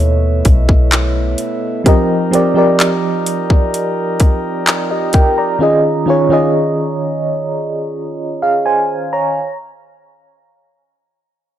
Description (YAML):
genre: contemporary R&B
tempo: 64 BPM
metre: 4/4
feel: straight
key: Eb mixolydian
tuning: A4 = 439 Hz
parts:
  - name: mellow FM electric piano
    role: accompaniment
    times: 0.0-9.6 s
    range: B2 to Bb5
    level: -14 LUFS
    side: right 1 dB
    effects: chorus, tremolo
  - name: pipe organ, flutes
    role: sustained chords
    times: 0.0-5.6 s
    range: F3 to Bb4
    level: -21 LUFS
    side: right 1 dB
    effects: none
  - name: soft 808-style bass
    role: bass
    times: 0.0-1.4 s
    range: B1 to Eb2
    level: -14 LUFS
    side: equal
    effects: none
  - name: trap drum kit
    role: drums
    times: 0.5-5.4 s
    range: handclaps, hi-hat, kick drum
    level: -13 LUFS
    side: equal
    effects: none
room: digital ambience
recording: dry, gritty hardware recording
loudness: -12 LUFS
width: side -11 dB against mid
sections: 0.0-9.4 A section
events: none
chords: 0.0 B9sus4; 1.9 F9sus4; 5.6 Eb9sus4